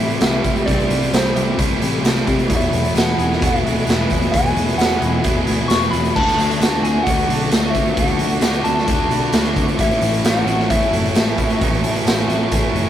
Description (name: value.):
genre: rock, shoegaze and dream pop.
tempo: 132 BPM.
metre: 4/4.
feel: straight.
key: unclear.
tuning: A4 = 441 Hz.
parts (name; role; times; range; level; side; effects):
soft struck synth lead; melody; 0.0-12.9 s; C5 to C#6; -22 LUFS; left 1 dB; chorus.
evolving wavetable pad; sustained chords; 0.0-12.9 s; F#4 to D6; -29 LUFS; equal; ensemble chorus, built-in reverb.
direct-recorded clean electric guitar; arpeggios; 0.0-12.9 s; E3 to G#4; -32 LUFS; left 4 dB; none.
crunchy overdriven guitar; riff; 0.0-12.9 s; E2 to F#4; -24 LUFS; right 6 dB; none.
thick fuzz guitar; riff; 0.0-12.9 s; E2 to D4; -24 LUFS; left 4 dB; distortion.
vintage muted picked electric bass; bass; 0.0-12.9 s; E1 to D3; -24 LUFS; equal; none.
raw garage drum kit; drums; 0.1-12.9 s; crash cymbal, hi-hat, kick drum, snare drum; -19 LUFS; equal; none.
tambourine; percussion; 0.2-12.8 s; none; -38 LUFS; left 8 dB; none.
room: wet studio reverb, RT60 0.5 s.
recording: rough rehearsal-room recording, tube saturation.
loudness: -15 LUFS.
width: side -10 dB against mid.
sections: 0.0-12.9 A section.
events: none.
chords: 0.0 Cmaj7; 2.5 Eadd9; 6.2 Dadd9; 9.8 A6.